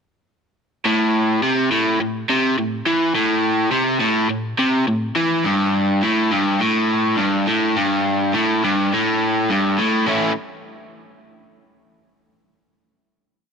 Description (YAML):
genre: rock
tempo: 104 BPM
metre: 4/4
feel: straight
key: unclear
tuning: A4 = 441 Hz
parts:
  - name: overdriven electric guitar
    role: solo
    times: 0.9-10.3 s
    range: G2 to E4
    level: -16 LUFS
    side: equal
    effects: none
room: light reverb, digital ambience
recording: none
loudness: -16 LUFS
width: side -6 dB against mid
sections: 0.9-10.1 riff; 10.1-12.4 final chord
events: none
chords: 0.9 A5; 5.5 Gsus2; 10.1 A